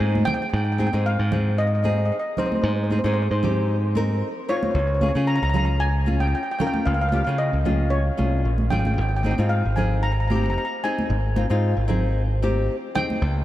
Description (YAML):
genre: calypso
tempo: 114 BPM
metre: 4/4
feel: swing 54% on 16ths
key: Ab major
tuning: A4 = 440 Hz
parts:
  - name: nylon-string guitar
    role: accompaniment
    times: 0.0-13.2 s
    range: C4 to Bb4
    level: -28 LUFS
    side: left 3 dB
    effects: none
  - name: modern bright picked electric bass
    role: bass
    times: 0.0-13.4 s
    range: Ab1 to Db3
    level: -21 LUFS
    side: equal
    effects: none
  - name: congas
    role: percussion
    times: 0.2-13.2 s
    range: none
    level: -29 LUFS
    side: right 2 dB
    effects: none
  - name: steel pan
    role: melody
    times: 0.3-13.4 s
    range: C5 to Bb5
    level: -27 LUFS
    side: equal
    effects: analog delay
room: moderate huge ambient reverb, RT60 3.9 s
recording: dreamy mix soaked in reverb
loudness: -20 LUFS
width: side -14 dB against mid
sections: 0.5-13.4 A section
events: none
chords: 0.0 Ab; 4.8 Db; 9.0 Ab6